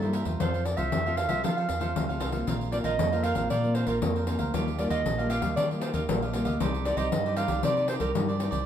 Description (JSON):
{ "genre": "samba and choro", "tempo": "116 BPM", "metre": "4/4", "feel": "straight", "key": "Bb major", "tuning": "A4 = 440 Hz", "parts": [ { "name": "dark clarinet", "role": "melody", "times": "0.0-8.4 s", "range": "A4 to F5", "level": "-30 LUFS", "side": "right 2 dB", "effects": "none" }, { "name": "cavaquinho", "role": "accompaniment", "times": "0.0-8.7 s", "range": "Eb4 to F5", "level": "-36 LUFS", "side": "right 5 dB", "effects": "none" }, { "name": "nylon-string guitar", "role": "accompaniment", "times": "0.0-8.6 s", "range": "F2 to D5", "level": "-33 LUFS", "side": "left 1 dB", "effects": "none" }, { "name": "fingered electric bass", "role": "bass", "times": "0.0-8.6 s", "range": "Bb1 to F3", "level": "-31 LUFS", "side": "equal", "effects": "none" }, { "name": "pandeiro", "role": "percussion", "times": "0.0-8.7 s", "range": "none", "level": "-31 LUFS", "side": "left 4 dB", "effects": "none" } ], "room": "moderate studio reverb, RT60 0.8 s", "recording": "minimal, uncompressed stereo recording", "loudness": "-25 LUFS", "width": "side -9 dB against mid", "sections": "0.0-2.5 A section; 2.5-8.7 B section", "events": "none", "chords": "0.4 F; 2.5 Bbsus2; 4.5 Ebadd9; 6.6 Cmadd9" }